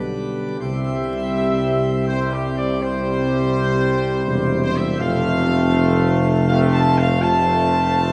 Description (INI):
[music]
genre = classical, ceremonial fanfare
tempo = 81 BPM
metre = 3/4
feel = straight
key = unclear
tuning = A4 = 440 Hz
[part]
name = dark trumpet section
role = melody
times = 0.0-8.1 s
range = G4 to A5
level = -25 LUFS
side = equal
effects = none
[part]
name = dark French horn section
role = sustained chords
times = 0.0-8.1 s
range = B3 to G4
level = -27 LUFS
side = equal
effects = none
[part]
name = pipe organ, plenum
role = sustained chords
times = 0.0-8.1 s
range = C3 to C5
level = -27 LUFS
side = equal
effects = none
[part]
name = warm trombone section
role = sustained chords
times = 0.0-8.1 s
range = B2 to A3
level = -29 LUFS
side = equal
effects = none
[part]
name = mellow tuba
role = bass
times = 0.0-8.1 s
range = E1 to C2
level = -24 LUFS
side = equal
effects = none
[sound]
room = wet church reverb, RT60 3.8 s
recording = dark, warm production, vinyl crackle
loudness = -19 LUFS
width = mono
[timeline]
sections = 0.0-8.1 A section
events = none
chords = 0.0 G; 0.6 C; 5.0 F